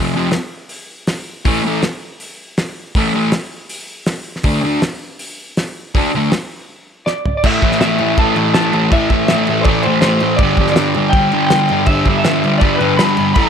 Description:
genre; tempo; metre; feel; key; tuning
garage rock duo or trio; 161 BPM; 4/4; straight; A minor; A4 = 440 Hz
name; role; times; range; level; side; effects
fuzz guitar; riff; 0.0-13.5 s; F2 to D4; -15 LUFS; equal; distortion
cloth-damped thuddy drum kit; drums; 0.3-13.4 s; crash cymbal, hi-hat, kick drum, snare drum, toms; -18 LUFS; equal; none
electric slide guitar; melody; 7.1-13.5 s; B4 to B5; -18 LUFS; left 1 dB; none
room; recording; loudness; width
light reverb, small room ambience; none; -13 LUFS; side -7 dB against mid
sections
0.0-7.4 A section; 7.4-13.5 B section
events
break 6.7-7.4; drum fill 7.1-7.4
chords
0.0 F5; 1.5 A5; 4.5 D5; 7.4 A5; 10.4 G5

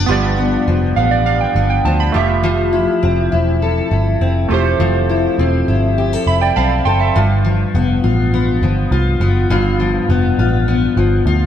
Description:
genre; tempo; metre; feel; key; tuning
indie pop; 102 BPM; 4/4; straight; unclear; A4 = 445 Hz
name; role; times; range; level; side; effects
fingerpicked steel-string acoustic guitar; accompaniment; 0.0-11.5 s; G2 to A4; -17 LUFS; left 4 dB; lush chorus, vibrato effect
warm analog keys; accompaniment; 0.0-7.3 s; A3 to C6; -19 LUFS; right 7 dB; chorus, cassette tape
vintage muted picked electric bass; bass; 0.0-11.5 s; E1 to D2; -16 LUFS; equal; none
room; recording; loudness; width
moderate concert hall reverb, RT60 1.8 s; none; -13 LUFS; side -10 dB against mid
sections
0.0-7.1 A section; 7.1-11.5 B section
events
synth keys fill 0.7-2.4, 6.0-7.1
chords
0.0 G7; 2.1 Fmaj9; 7.1 G7

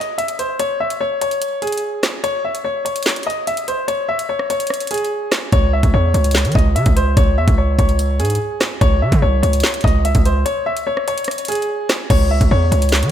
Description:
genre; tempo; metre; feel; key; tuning
hip hop, drill; 146 BPM; 4/4; half-time; C# harmonic minor; A4 = 440 Hz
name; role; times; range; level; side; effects
warm baby grand piano; melody; 0.0-13.1 s; G#4 to E5; -20 LUFS; left 2 dB; tape echo
drill drum kit; drums; 0.0-13.1 s; crash cymbal, handclaps, hi-hat, kick drum, rim click, snare drum; -18 LUFS; equal; none
distorted 808-style bass; bass; 5.5-13.1 s; B#1 to E3; -16 LUFS; right 1 dB; distortion
room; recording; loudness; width
light reverb; none; -15 LUFS; side -10 dB against mid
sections
0.0-12.1 A section; 12.1-13.1 B section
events
break 0.0-5.5, 10.5-12.1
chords
0.0 N.C.; 8.8 C#5; 12.1 C#m

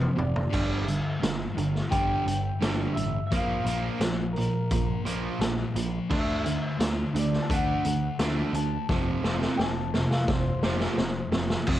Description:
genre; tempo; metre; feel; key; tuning
quiet-loud alternative rock; 86 BPM; 4/4; straight; unclear; A4 = 440 Hz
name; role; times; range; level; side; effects
electric guitar through a small old amp; melody; 0.0-11.3 s; Bb4 to A5; -33 LUFS; left 2 dB; cassette tape
crunchy overdriven guitar; riff; 0.0-11.8 s; F2 to D4; -30 LUFS; right 6 dB; none
thick fuzz guitar; riff; 0.0-11.8 s; F2 to D4; -32 LUFS; left 6 dB; distortion
growling picked electric bass; bass; 0.0-11.8 s; F1 to D2; -32 LUFS; equal; overdrive
raw garage drum kit; drums; 0.0-11.8 s; crash cymbal, hi-hat, kick drum, snare drum, splash cymbal, toms; -29 LUFS; equal; cassette tape
room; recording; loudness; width
small room ambience; home recording on cassette; -24 LUFS; side -13 dB against mid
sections
0.0-11.7 A section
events
drum fill 0.0-0.5, 8.9-11.7; clean electric guitar solo 0.0-11.7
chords
0.0 F5; 0.5 G5; 3.3 Bb5; 6.1 D; 8.9 F5

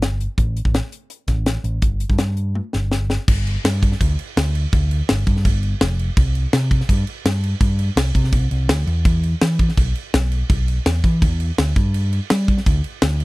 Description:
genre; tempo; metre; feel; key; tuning
math rock and midwest emo; 166 BPM; 4/4; straight; unclear; A4 = 440 Hz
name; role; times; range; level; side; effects
picked electric bass; bass; 0.0-13.2 s; F1 to G3; -19 LUFS; equal; none
crisp fusion drum kit; drums; 0.0-13.2 s; crash cymbal, hi-hat, kick drum, snare drum, toms; -19 LUFS; equal; none
room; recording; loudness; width
little or no reverb; dry, close 1970s-style studio recording; -16 LUFS; side -21 dB against mid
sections
0.0-3.3 A section; 3.3-13.2 B section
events
drum fill 2.6-3.3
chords
none

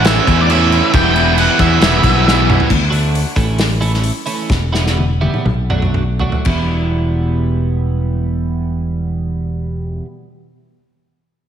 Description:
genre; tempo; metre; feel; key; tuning
quiet-loud alternative rock; 115-136 BPM; 4/4; straight; E dorian; A4 = 440 Hz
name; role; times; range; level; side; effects
octave-fuzz lead guitar; melody; 0.0-2.4 s; D5 to G5; -18 LUFS; right 1 dB; distortion, digital delay
distorted electric guitar; riff; 0.0-2.7 s; A2 to E4; -17 LUFS; right 10 dB; distortion, slapback echo
thick fuzz guitar; riff; 0.0-2.7 s; A2 to E4; -19 LUFS; left 10 dB; distortion, slapback echo
picked electric bass; bass; 0.0-10.0 s; E1 to E2; -17 LUFS; equal; none
loose indie drum kit; drums; 0.0-6.6 s; crash cymbal, hi-hat, kick drum, snare drum, toms; -17 LUFS; equal; none
twelve-string electric guitar; arpeggios; 2.9-10.1 s; E2 to F#4; -21 LUFS; right 3 dB; analog chorus
room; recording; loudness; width
moderate lush hall reverb, RT60 1.6 s, small room reverb; big arena sound; -13 LUFS; side -9 dB against mid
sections
0.0-2.7 A section; 2.7-6.5 B section; 6.5-10.6 C section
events
drum fill 2.2-2.7, 4.5-6.5; slowing down 2.7-6.5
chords
0.0 A; 0.9 Em; 2.7 D; 3.4 A; 4.5 Em; 5.4 Bm7; 6.5 Em

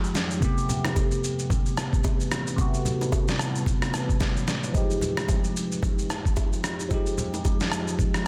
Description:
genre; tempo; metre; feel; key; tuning
amapiano; 111 BPM; 4/4; swing 58% on 16ths; unclear; A4 = 444 Hz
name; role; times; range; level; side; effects
bell-like tine electric piano; accompaniment; 0.0-8.3 s; C3 to G4; -31 LUFS; equal; phaser
deep dark ambient pad; sustained chords; 0.0-8.3 s; F2 to B4; -38 LUFS; equal; none
boom bap sampler-style drum kit; drums; 0.0-8.3 s; kick drum, rim click, shaker, snare drum; -28 LUFS; equal; none
bongos and congas; percussion; 0.1-8.1 s; none; -37 LUFS; equal; none
room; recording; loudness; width
digital ambience; dense, heavily limited modern master; -26 LUFS; mono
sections
0.0-8.3 A section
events
none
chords
0.4 Am9; 4.7 Fm9

